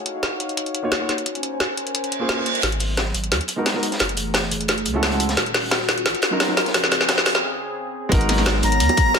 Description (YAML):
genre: liquid drum and bass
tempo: 175 BPM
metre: 4/4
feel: straight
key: G# dorian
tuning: A4 = 440 Hz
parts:
  - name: warm analog pad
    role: sustained chords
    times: 0.0-9.2 s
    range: C#3 to G#5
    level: -28 LUFS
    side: equal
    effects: chorus
  - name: drum and bass drum kit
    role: drums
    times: 0.1-9.2 s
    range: hi-hat, snare drum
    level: -21 LUFS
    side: equal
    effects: high-pass filter on hats, soft clipping on snare, high-pass filter on snare, high-pass filter on room
  - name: warm concert grand piano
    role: accompaniment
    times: 0.8-8.6 s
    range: F#3 to C#5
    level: -26 LUFS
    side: equal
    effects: ping-pong delay
  - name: reverse cymbal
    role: sound effects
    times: 2.1-2.6 s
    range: none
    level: -26 LUFS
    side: right 4 dB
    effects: none
  - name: warm sub bass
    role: bass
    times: 2.6-8.9 s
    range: D#1 to D#2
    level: -26 LUFS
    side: equal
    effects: none
  - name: crunchy breakbeat drum kit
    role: drums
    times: 2.6-9.2 s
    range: hi-hat, snare drum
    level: -28 LUFS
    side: equal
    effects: high-pass filter on hats, high-pass filter on snare, high-pass filter on room
  - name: electronic kick drum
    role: drums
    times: 8.1-9.0 s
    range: none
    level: -18 LUFS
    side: equal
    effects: none
  - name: breathy bright concert flute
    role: melody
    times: 8.6-9.2 s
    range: A#5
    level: -20 LUFS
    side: left 3 dB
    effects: dub echo
  - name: bongos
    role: percussion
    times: 8.9-9.0 s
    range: none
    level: -27 LUFS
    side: right 6 dB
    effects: none
room: moderate digital room reverb, RT60 1.1 s, studio ambience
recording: dense, heavily limited modern master, high-pass filter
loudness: -18 LUFS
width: side -6 dB against mid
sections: 0.0-2.6 A section; 2.6-8.1 B section; 8.1-9.2 C section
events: reverse cymbal 2.1-2.6; build-up 2.6-8.1; drum fill 2.6-7.4; filter sweep on analog synth pad 2.6-8.1; break 7.4-8.1; drop 8.1-9.2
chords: 0.0 D#m9; 1.3 A#m9; 2.6 G#m9; 4.0 F#m9; 5.4 D#m9; 6.7 A#m9; 8.1 G#m9